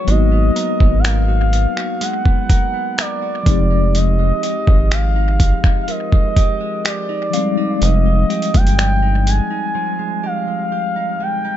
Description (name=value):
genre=contemporary R&B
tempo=62 BPM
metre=4/4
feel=straight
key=unclear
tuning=A4 = 442 Hz
part: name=gliding portamento lead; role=melody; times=0.0-11.6 s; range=Db5 to Ab5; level=-22 LUFS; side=equal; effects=chorus, analog delay
part: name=mellow tine electric piano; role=accompaniment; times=0.0-11.6 s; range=F3 to G4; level=-23 LUFS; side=left 5 dB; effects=medium stereo tremolo, analog delay
part: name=direct-recorded clean electric guitar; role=arpeggios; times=0.0-11.6 s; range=F3 to Bb4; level=-27 LUFS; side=right 6 dB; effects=phaser, analog delay
part: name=rubbery square bass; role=bass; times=0.1-9.4 s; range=F1 to Ab1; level=-15 LUFS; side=equal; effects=none
part: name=dusty soul sampler-style drum kit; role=drums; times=0.1-9.5 s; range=finger snaps, hi-hat, kick drum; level=-16 LUFS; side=equal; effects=overdrive
part: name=soft synth bell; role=texture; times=4.4-11.6 s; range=Bb4 to F5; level=-36 LUFS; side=equal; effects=none
room=little or no reverb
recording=echo-heavy mix, nothing above 7.8 kHz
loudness=-14 LUFS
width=side -11 dB against mid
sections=0.0-11.6 A section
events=break 9.8-11.6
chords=0.0 Abm9; 3.5 Fm9